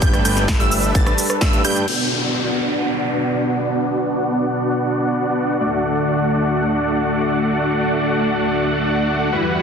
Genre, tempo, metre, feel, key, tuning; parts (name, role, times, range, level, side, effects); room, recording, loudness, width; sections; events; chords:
EDM, festival progressive house; free time; D major; A4 = 442 Hz
lush unison pad; sustained chords; 0.0-9.6 s; D2 to B4; -24 LUFS; left 1 dB; chorus, vintage 12-bit sampler grit, sidechain pumping
wide unison pluck; arpeggios; 0.0-1.9 s; E6 to A6; -25 LUFS; right 2 dB; phaser, sidechain pumping, dub echo
dense compressed supersaw; riff; 0.0-9.6 s; G3 to A5; -19 LUFS; equal; cassette tape, sidechain pumping, low-pass filter, dub echo
fat analog bass; bass; 0.0-1.9 s; G1 to G2; -21 LUFS; equal; sidechain pumping
big-room dance drum kit; drums; 0.0-2.0 s; crash cymbal, hi-hat, rim click, shaker, snare drum; -24 LUFS; left 1 dB
electronic kick drum; drums; 0.0-1.5 s; -18 LUFS; equal
downlifter; sound effects; 1.9-5.6 s; -27 LUFS; left 1 dB
moderate lush hall reverb, RT60 2.1 s; dense, heavily limited modern master; -16 LUFS; side -6 dB against mid
0.0-1.9 A section; 1.9-9.6 B section
drop 0.0-1.9; band accent 1.4; filter sweep on supersaw synth 1.9-9.6; filter sweep on analog synth pad 1.9-9.6
0.0 Gadd9; 1.9 Bm; 5.6 D